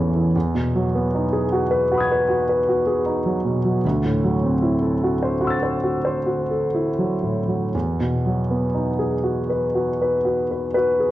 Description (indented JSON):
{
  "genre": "classical, impressionist solo piano",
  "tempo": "38-54 BPM (dotted quarters)",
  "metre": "9/8",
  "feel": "rubato",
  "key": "unclear",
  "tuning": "A4 = 440 Hz",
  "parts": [
    { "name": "warm grand piano", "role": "solo", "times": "0.0-11.1 s", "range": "A1 to A6", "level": "-19 LUFS", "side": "equal", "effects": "none" }
  ],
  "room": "wet recital hall reverb, RT60 1.4 s",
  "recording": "worn, warbling old tape, cassette tape, warbly pitch drift",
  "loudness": "-19 LUFS",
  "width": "side -14 dB against mid",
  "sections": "0.0-11.1 A section",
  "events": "none",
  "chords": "0.4 Emaj9; 3.8 D9; 7.7 Emaj9"
}